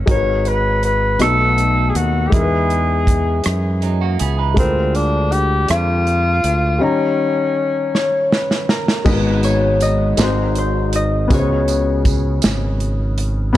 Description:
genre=slow gospel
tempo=53 BPM (dotted quarters)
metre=6/8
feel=straight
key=G# minor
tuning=A4 = 435 Hz
part: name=modern bright fingered electric bass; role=bass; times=0.0-13.6 s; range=G#1 to F#2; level=-19 LUFS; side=right 1 dB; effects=none
part: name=breathy tenor saxophone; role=melody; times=0.1-8.3 s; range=B#3 to C#5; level=-19 LUFS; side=left 2 dB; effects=tape echo
part: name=warm grand piano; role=accompaniment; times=0.1-13.6 s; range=G#2 to A#5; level=-21 LUFS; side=left 3 dB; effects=none
part: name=natural country drum kit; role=drums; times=0.1-13.3 s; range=crash cymbal, hi-hat, kick drum, rim click, snare drum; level=-19 LUFS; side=right 1 dB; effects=none
part: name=clean electric guitar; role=second line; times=3.8-4.7 s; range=F#3 to B4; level=-24 LUFS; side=right 10 dB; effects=none
part: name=concert harp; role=melody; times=7.9-13.6 s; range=D#4 to D#5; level=-21 LUFS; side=left 1 dB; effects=none
part: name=tambourine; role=percussion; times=9.1-13.6 s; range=none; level=-31 LUFS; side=right 10 dB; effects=none
room=light reverb, small room ambience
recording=dark, warm production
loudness=-14 LUFS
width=side -14 dB against mid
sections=0.0-9.1 A section; 9.1-13.6 B section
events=drum fill 7.9-9.1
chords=0.1 G#m7; 1.2 B7; 2.3 Emaj7; 4.6 A#7/D; 6.8 D#7; 9.1 G#m7; 10.2 G#7; 11.3 C#7sus4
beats=| 0.07 1.20 | 2.32 3.45 | 4.57 5.69 | 6.82 7.94 | 9.06 10.18 | 11.30 12.43 | 13.55

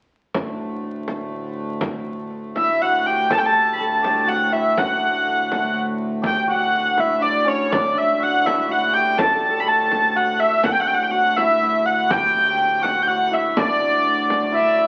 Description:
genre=medieval dance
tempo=122 BPM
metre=3/4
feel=straight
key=D major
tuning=A4 = 440 Hz
part: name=frame drum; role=percussion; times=0.3-14.5 s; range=none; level=-29 LUFS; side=equal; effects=none
part: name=hand-pumped harmonium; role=drone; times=0.4-14.9 s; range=D2 to A2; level=-32 LUFS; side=equal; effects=none
part: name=warm hurdy-gurdy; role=melody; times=2.6-14.9 s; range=C#5 to B5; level=-20 LUFS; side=equal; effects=none
part: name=hammered dulcimer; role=second line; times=2.6-14.9 s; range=C#4 to A4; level=-29 LUFS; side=equal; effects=none
room=wet large studio reverb, RT60 1.1 s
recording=very old 78 rpm record, vinyl crackle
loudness=-19 LUFS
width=mono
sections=0.3-3.3 A section; 3.3-14.9 B section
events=none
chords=none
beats=| 0.34 0.84 1.33 | 1.82 2.31 2.80 | 3.29 3.79 4.28 | 4.77 5.26 5.75 | 6.24 6.73 7.22 | 7.71 8.20 8.69 | 9.18 9.67 10.16 | 10.64 11.13 11.62 | 12.11 12.60 13.08 | 13.57 14.05 14.54

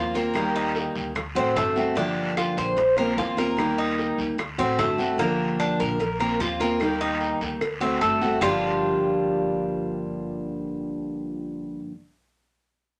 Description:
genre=latin, Cuban son and guajira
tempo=149 BPM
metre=4/4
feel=straight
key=G minor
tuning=A4 = 440 Hz
part: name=picked steel-string acoustic guitar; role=accompaniment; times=0.0-11.9 s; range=G2 to G4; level=-29 LUFS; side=equal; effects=none
part: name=Cuban tres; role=arpeggios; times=0.0-11.8 s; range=G3 to C5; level=-28 LUFS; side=equal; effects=none
part: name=upright bass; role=bass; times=0.0-11.8 s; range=G1 to Eb2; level=-40 LUFS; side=equal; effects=none
part: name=guiro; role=percussion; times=0.2-8.5 s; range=none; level=-38 LUFS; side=equal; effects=none
part: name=bongos and cowbell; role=percussion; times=0.4-8.5 s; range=none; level=-36 LUFS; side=equal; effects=none
part: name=claves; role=percussion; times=0.4-8.5 s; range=none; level=-37 LUFS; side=equal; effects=none
room=moderate studio reverb, RT60 0.5 s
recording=none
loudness=-25 LUFS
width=mono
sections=0.0-5.2 A section; 5.2-8.4 B section; 8.4-11.6 C section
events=none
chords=0.4 Eb; 1.2 D7; 2.0 Gm7; 2.8 Bbsus2; 3.6 Eb; 4.4 D7; 5.2 Gm7; 6.0 Bbsus2; 6.8 Eb; 7.6 D7; 8.4 Gm7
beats=| 0.36 0.76 1.16 1.57 | 1.97 2.38 2.78 3.18 | 3.58 3.99 4.39 4.79 | 5.20 5.60 6.00 6.41 | 6.81 7.21 7.61 8.02 | 8.42 8.82 9.22 9.63 | 10.03 10.43 10.84 11.24

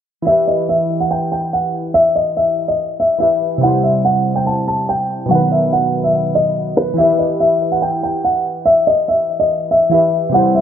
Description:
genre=hip hop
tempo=143 BPM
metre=4/4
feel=half-time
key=E harmonic minor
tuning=A4 = 440 Hz
part: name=glassy digital keys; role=accompaniment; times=0.2-10.6 s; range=B2 to C5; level=-19 LUFS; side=right 1 dB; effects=chorus
part: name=dark concert grand piano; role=melody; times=0.3-10.6 s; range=B4 to A5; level=-14 LUFS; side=equal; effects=ping-pong delay
room=light reverb, studio ambience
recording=low-pass filter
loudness=-13 LUFS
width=side -9 dB against mid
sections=0.3-10.6 A section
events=none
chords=0.3 Em; 3.6 C; 5.3 B; 7.0 Em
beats=| 0.27 0.69 1.11 1.53 | 1.95 2.37 2.79 3.21 | 3.62 4.04 4.46 4.88 | 5.30 5.72 6.14 6.56 | 6.98 7.40 7.82 8.24 | 8.66 9.08 9.50 9.92 | 10.34

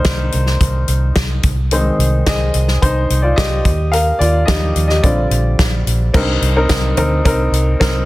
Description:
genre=piano-driven pop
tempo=108 BPM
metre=4/4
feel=straight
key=C minor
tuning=A4 = 438 Hz
part: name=clear upright piano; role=accompaniment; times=0.0-8.1 s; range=G2 to F5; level=-18 LUFS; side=left 1 dB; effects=none
part: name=natural country drum kit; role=drums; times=0.0-7.9 s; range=crash cymbal, hi-hat, kick drum, snare drum, toms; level=-17 LUFS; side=equal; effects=none
part: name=vintage muted fingered electric bass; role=bass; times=0.1-8.0 s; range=Bb1 to Eb2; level=-16 LUFS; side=equal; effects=none
room=light reverb, small room ambience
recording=dense, heavily limited modern master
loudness=-13 LUFS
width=side -18 dB against mid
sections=0.0-6.1 A section; 6.1-8.1 B section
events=upright piano solo 0.0-6.1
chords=0.0 Cm7; 1.4 Ab/C; 3.7 Ebadd9; 5.0 Bb6; 6.1 Cm7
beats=0.05 0.60 1.16 | 1.71 2.27 2.82 3.38 | 3.93 4.48 5.04 5.59 | 6.15 6.70 7.25 7.81

